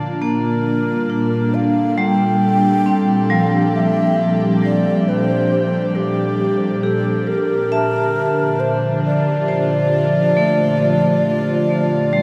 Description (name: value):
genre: ambient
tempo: 68 BPM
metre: 4/4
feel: straight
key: unclear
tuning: A4 = 440 Hz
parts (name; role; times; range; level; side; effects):
- airy breathy pad; sustained chords; 0.0-12.2 s; Bb2 to A4; -22 LUFS; equal; chorus
- vibraphone with medium hard mallets; arpeggios; 0.0-12.2 s; F3 to A5; -21 LUFS; equal; tape echo
- breathy mellow shakuhachi; melody; 0.2-12.2 s; G4 to G5; -22 LUFS; equal; tape echo
room: wet huge ambient reverb, RT60 8.1 s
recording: none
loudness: -17 LUFS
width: mono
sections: 0.0-12.2 A section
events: fade-in on shakuhachi 0.0-12.2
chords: 0.0 Bb